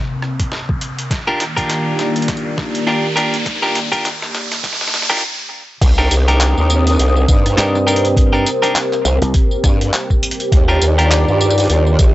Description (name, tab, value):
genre	glitch hop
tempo	102 BPM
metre	4/4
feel	swing 58% on 16ths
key	C minor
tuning	A4 = 440 Hz
part	dark analog pad	sustained chords	0.0-12.1 s	C3 to Eb6	-20 LUFS	equal	chorus, sidechain pumping
part	riser	sound effects	0.1-5.2 s	none	-23 LUFS	equal	none
part	boom bap sampler-style drum kit	drums	0.2-12.1 s	crash cymbal, handclaps, hi-hat, rim click, snare drum, tambourine	-22 LUFS	equal	high-pass filter on snare, small room ambience, high-pass filter on hats, high-pass filter on perc, high-pass filter on cymbals
part	electronic kick drum	drums	0.4-12.1 s	none	-14 LUFS	equal	small room ambience
part	clean electric guitar	stabs	1.3-12.1 s	D4 to Bb4	-19 LUFS	equal	vintage 12-bit sampler grit, sidechain pumping, low-pass filter, analog delay
part	growl bass	bass	5.8-12.1 s	Bb1 to G2	-14 LUFS	equal	chorus
part	slap bass with an envelope filter	bass	7.6-9.3 s	C2 to G2	-16 LUFS	equal	none
room	light reverb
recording	dry, gritty hardware recording, high-pass filter, nothing above 7.9 kHz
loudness	-13 LUFS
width	side -16 dB against mid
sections	0.0-5.8 A section; 5.8-12.1 B section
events	build-up 0.0-5.8; drum fill 0.0-5.2; filter sweep on analog synth pad 0.0-5.8; filter sweep 0.0-5.8; riser 0.1-5.2; stop 5.2-5.8; drop 5.8-12.1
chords	0.0 Cm7; 1.1 Ebmaj7; 5.8 Cm7; 10.5 Ebmaj7